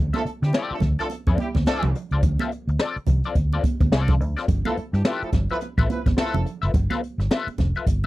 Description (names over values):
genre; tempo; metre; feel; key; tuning
funk; 106 BPM; 4/4; swing 60% on 16ths; D dorian; A4 = 442 Hz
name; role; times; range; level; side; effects
vintage muted fingered electric bass; bass; 0.0-8.1 s; F1 to D3; -23 LUFS; equal; none
warm horn section; second line; 0.1-6.4 s; E3 to B4; -30 LUFS; right 2 dB; slapback echo
clean electric guitar; accompaniment; 0.1-8.1 s; C4 to F5; -28 LUFS; left 5 dB; wah
jazz brush drum kit; drums; 0.1-8.0 s; hi-hat, kick drum, snare drum; -23 LUFS; equal; none
congas; percussion; 0.1-8.1 s; none; -31 LUFS; right 6 dB; none
room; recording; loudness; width
little or no reverb; dry, close 1970s-style studio recording; -20 LUFS; side -18 dB against mid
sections
0.0-8.1 A section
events
none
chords
0.0 Dm7; 4.5 G13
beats
0.54 1.10 1.66 | 2.23 2.79 3.35 3.92 | 4.48 5.05 5.61 6.17 | 6.74 7.30 7.87